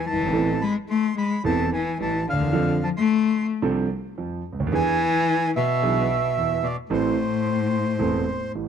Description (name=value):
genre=tango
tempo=110 BPM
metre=4/4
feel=rubato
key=A harmonic minor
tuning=A4 = 440 Hz
part: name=bandoneon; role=melody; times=0.0-8.5 s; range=C5 to C6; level=-26 LUFS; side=right 4 dB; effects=none
part: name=clear cello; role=second line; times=0.0-8.5 s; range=A2 to A3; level=-24 LUFS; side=left 6 dB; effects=none
part: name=warm concert grand piano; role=accompaniment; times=0.1-8.7 s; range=E1 to A4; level=-25 LUFS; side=right 4 dB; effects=none
room=light reverb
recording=dry, close 1970s-style studio recording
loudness=-20 LUFS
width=side -7 dB against mid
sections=0.0-8.7 A section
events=none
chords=0.3 Amadd9; 2.5 F6; 4.7 E7; 6.9 Am